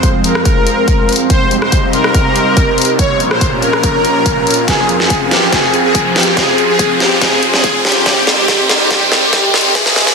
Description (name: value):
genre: heavy wobble dubstep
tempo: 142 BPM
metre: 4/4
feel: half-time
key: F minor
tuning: A4 = 442 Hz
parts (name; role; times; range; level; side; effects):
- soft supersaw; melody; 0.0-10.1 s; G4 to Db5; -15 LUFS; equal; phaser, tape echo
- lush unison pad; sustained chords; 0.0-10.1 s; F2 to Db5; -19 LUFS; equal; chorus, sidechain pumping
- dubstep drum kit; drums; 0.0-10.1 s; hi-hat, rim click, snare drum; -14 LUFS; left 1 dB; high-pass filter on hats, high-pass filter on toms, high-pass filter on snare, high-pass filter on room
- electronic kick drum; drums; 0.0-9.8 s; none; -15 LUFS; equal; none
- riser; sound effects; 0.6-10.1 s; none; -18 LUFS; equal; none
- ethereal airy pad; texture; 0.0-10.1 s; Ab3 to C6; -19 LUFS; right 1 dB; ensemble chorus, built-in reverb, sidechain pumping
room: moderate lush hall reverb, RT60 1.9 s, digital ambience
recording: dense, heavily limited modern master, high-pass filter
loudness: -9 LUFS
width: side -4 dB against mid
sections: 0.0-10.1 A section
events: build-up 0.0-10.1; filter sweep 0.0-10.1; riser 0.6-10.1; drum fill 4.7-10.1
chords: 0.0 Fm; 1.3 Cm; 3.0 Bbm; 4.7 Fm; 8.1 Cm